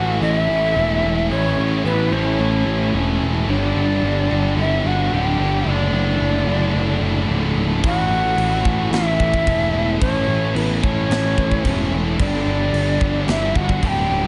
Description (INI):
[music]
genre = heavy metal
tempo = 110 BPM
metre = 4/4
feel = straight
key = unclear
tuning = A4 = 435 Hz
[part]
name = shakuhachi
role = melody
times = 0.0-14.3 s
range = B4 to A5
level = -25 LUFS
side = equal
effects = delay
[part]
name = high-gain lead guitar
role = second line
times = 0.0-14.3 s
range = B3 to G4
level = -30 LUFS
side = equal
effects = distortion, delay
[part]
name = scooped high-gain guitar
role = riff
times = 0.0-14.3 s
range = D2 to E3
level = -30 LUFS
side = equal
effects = distortion
[part]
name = tight distorted guitar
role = riff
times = 0.0-14.3 s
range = D2 to A3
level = -27 LUFS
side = equal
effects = distortion
[part]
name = fuzz picked electric bass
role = bass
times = 0.0-14.3 s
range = C#1 to A1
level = -23 LUFS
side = equal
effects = overdrive
[part]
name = tight metal drum kit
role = drums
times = 7.8-14.0 s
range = crash cymbal, kick drum, snare drum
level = -26 LUFS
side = equal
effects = none
[sound]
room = small room ambience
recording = nothing above 11.0 kHz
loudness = -19 LUFS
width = mono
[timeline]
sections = 0.0-14.3 A section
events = none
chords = 0.0 A; 3.5 G5; 5.7 D/F#; 7.8 A; 12.2 G5